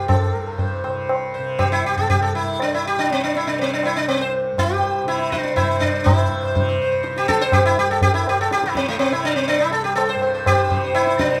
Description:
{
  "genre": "indian classical, Hindustani",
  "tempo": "122 BPM",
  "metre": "3/4",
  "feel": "straight",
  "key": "C raga bhupali",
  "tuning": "A4 = 439 Hz",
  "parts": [
    { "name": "sitar", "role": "melody", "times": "0.0-11.4 s", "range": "A3 to C5", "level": "-21 LUFS", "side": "equal", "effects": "none" },
    { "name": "tanpura", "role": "drone", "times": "0.0-11.4 s", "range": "C2 to C3", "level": "-31 LUFS", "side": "equal", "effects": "none" },
    { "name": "tabla", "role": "percussion", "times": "0.1-11.4 s", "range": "none", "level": "-25 LUFS", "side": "equal", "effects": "none" }
  ],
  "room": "moderate recital hall reverb, RT60 1.3 s",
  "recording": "none",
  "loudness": "-20 LUFS",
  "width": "mono",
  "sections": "0.0-6.1 A section; 6.1-11.4 B section",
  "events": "speeding up 0.0-11.4",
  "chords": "none"
}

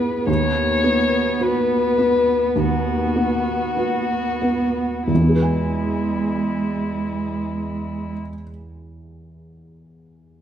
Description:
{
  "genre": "neoclassical piano and strings",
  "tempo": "44-54 BPM",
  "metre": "4/4",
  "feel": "rubato",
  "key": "E major",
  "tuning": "A4 = 436 Hz",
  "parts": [
    { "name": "muted violin", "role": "melody", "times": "0.0-8.2 s", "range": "E4 to C#5", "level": "-23 LUFS", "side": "left 4 dB", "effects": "none" },
    { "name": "muted cello", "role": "second line", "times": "0.0-8.2 s", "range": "G#3 to B3", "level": "-25 LUFS", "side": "right 5 dB", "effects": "none" },
    { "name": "felt-muted upright piano", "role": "accompaniment", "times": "0.0-10.4 s", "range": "D#2 to G#5", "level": "-22 LUFS", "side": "equal", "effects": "none" }
  ],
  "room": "wet recital hall reverb, RT60 1.4 s",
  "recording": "recorded in a church or concert hall",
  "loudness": "-18 LUFS",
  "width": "side -10 dB against mid",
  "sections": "0.0-5.1 A section; 5.1-10.3 B section",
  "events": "slowing down 0.0-5.1",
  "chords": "0.3 B/D#; 5.1 E"
}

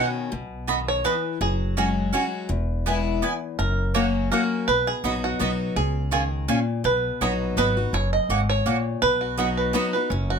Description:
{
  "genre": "bluegrass",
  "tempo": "166 BPM",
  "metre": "3/4",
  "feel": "swing 54% on 8ths",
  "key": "B major",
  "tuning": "A4 = 439 Hz",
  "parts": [
    { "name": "bluegrass banjo", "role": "melody", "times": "0.0-10.4 s", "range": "B3 to D#5", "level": "-25 LUFS", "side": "right 3 dB", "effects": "plate reverb" },
    { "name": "picked steel-string acoustic guitar", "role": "accompaniment", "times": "0.0-10.4 s", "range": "E2 to F#4", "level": "-26 LUFS", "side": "left 4 dB", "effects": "none" },
    { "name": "mandolin", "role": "stabs", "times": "0.0-9.8 s", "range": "A#3 to B5", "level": "-26 LUFS", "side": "right 5 dB", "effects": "none" },
    { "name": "upright bass", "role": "bass", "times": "0.3-10.4 s", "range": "E1 to C#2", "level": "-27 LUFS", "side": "equal", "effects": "none" }
  ],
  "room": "moderate small room ambience, RT60 0.5 s",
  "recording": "none",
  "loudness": "-21 LUFS",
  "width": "side -6 dB against mid",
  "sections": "0.3-10.4 A section",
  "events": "five-string banjo solo 0.3-10.4",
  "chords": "0.3 B; 1.4 F#sus2; 2.5 E; 3.6 F#; 4.7 B; 5.8 C#; 6.8 B; 7.9 F#; 9.0 B"
}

